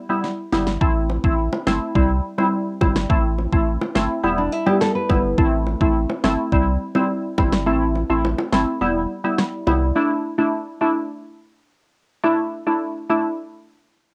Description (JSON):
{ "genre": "dancehall", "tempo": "105 BPM", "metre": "4/4", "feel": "straight", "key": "unclear", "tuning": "A4 = 440 Hz", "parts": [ { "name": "glassy wavetable pluck", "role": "accompaniment", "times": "0.1-13.2 s", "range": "G3 to E4", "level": "-23 LUFS", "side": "equal", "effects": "chorus, cassette tape" }, { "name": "pop drum kit", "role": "drums", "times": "0.2-9.5 s", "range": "kick drum, rim click, snare drum", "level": "-23 LUFS", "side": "equal", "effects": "cassette tape" }, { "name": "sub bass with octave", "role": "bass", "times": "0.5-9.9 s", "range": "E1 to C2", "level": "-26 LUFS", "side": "equal", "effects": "none" }, { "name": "bongos", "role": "percussion", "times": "1.1-9.8 s", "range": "none", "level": "-29 LUFS", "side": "equal", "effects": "none" }, { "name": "nylon-string guitar", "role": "arpeggios", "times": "4.4-5.4 s", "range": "D4 to B4", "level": "-25 LUFS", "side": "equal", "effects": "cassette tape" } ], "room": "moderate booth ambience, RT60 0.2 s", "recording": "home recording on cassette", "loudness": "-20 LUFS", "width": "mono", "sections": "0.0-10.0 A section; 10.0-14.1 B section", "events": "break 0.0-0.8; drum fill 0.2-0.8; kick muted 7.7-10.0", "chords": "0.0 Em; 0.8 Am; 2.0 C; 3.1 Am; 4.2 Em; 5.4 Am; 6.5 C; 7.7 Am; 8.8 Em; 10.0 Dsus2" }